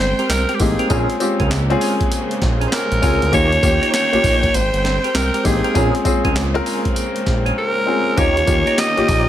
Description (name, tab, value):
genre	R&B, new jack swing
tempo	99 BPM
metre	4/4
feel	swing 64% on 16ths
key	Bb dorian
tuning	A4 = 440 Hz
part	raspy alto saxophone	melody	0.0-9.3 s	G4 to Eb5	-19 LUFS	right 1 dB	none
part	clear studio string section	sustained chords	0.0-9.3 s	Db3 to G5	-26 LUFS	right 2 dB	none
part	fat analog bass	bass	0.0-9.3 s	G1 to Eb2	-20 LUFS	equal	none
part	breakbeat sampler-style drum kit	drums	0.0-9.3 s	handclaps, hi-hat, kick drum, snare drum, tambourine	-21 LUFS	equal	none
part	percussive tonewheel organ	stabs	0.2-9.3 s	C4 to Db5	-27 LUFS	right 2 dB	chorus vibrato, slow rotary speaker
part	warm baby grand piano	accompaniment	0.6-9.3 s	Bb3 to Bb4	-20 LUFS	left 3 dB	none
room	little or no reverb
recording	none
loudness	-15 LUFS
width	side -11 dB against mid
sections	0.0-9.3 A section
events	drums muted 7.6-8.2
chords	0.0 Abmaj9; 0.9 Bbm7; 3.3 Eb7; 4.5 Abmaj9; 5.8 Bbm7; 8.2 Eb7